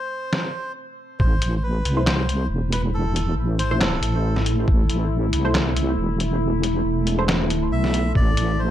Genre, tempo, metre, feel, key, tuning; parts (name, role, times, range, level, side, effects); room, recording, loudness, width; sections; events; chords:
deep dubstep; 138 BPM; 4/4; swing 55% on 16ths, half-time; A minor; A4 = 440 Hz
melodica; melody; 0.0-4.4, 7.7-8.7 s; A4 to E5; -30 LUFS; equal; dub echo
deep dark ambient pad; sustained chords; 1.5-8.7 s; A3 to A4; -27 LUFS; equal; chorus, built-in reverb
trip hop sampler-style drum kit; drums; 0.3-8.5 s; handclaps, hi-hat, snare drum; -24 LUFS; equal
deep soft wobble bass; bass; 1.2-8.7 s; E1 to C2; -22 LUFS; equal; chorus
electronic kick drum; drums; 1.2-1.3, 4.7-4.8, 8.2 s; -18 LUFS; equal
filtered dub chord stab; stabs; 2.0-8.7 s; A3 to C5; -30 LUFS; equal; chorus, dub echo
digital ambience; dark, warm production; -19 LUFS; side -11 dB against mid
0.0-1.2 A section; 1.2-8.7 B section
filter sweep on ambient pad 0.0-1.2; break 0.8-1.2; drop 1.2-8.7
0.0 Am